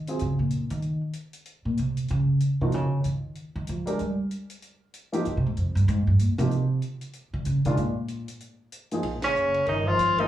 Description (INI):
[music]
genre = modal jazz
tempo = 190 BPM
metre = 4/4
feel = swing 61% on 8ths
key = unclear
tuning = A4 = 440 Hz
[part]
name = upright bass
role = bass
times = 0.0-10.3 s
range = Gb1 to G3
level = -25 LUFS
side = right 1 dB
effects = none
[part]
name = warm baby grand piano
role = accompaniment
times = 0.1-0.2, 2.6-10.3 s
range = Eb3 to Bb4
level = -29 LUFS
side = equal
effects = plate reverb, slapback echo
[part]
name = compact cocktail drum kit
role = drums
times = 0.1-10.2 s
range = hi-hat, ride cymbal, snare drum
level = -44 LUFS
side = left 1 dB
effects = none
[part]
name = warm tenor saxophone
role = melody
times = 9.2-10.3 s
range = Db4 to F4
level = -22 LUFS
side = left 1 dB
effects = plate reverb, slapback echo
[part]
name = mellow bass clarinet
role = second line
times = 9.2-10.3 s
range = Db3 to F3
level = -31 LUFS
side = equal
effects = slapback echo
[sound]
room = light reverb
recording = live gig heard through the venue's PA, club reverb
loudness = -24 LUFS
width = side -12 dB against mid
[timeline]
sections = 0.0-9.0 A section; 9.0-10.3 B section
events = upright bass solo 0.0-9.0; band accent 9.2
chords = 0.0 Absus4 (rootless); 4.0 Bb13sus4; 9.0 Eb9sus4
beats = | 0.20 0.51 0.83 1.15 | 1.46 1.78 2.09 2.41 | 2.73 3.04 3.36 3.67 | 3.99 4.30 4.62 4.93 | 5.25 5.56 5.88 6.20 | 6.51 6.83 7.14 7.46 | 7.77 8.09 8.40 8.72 | 9.03 9.35 9.66 9.98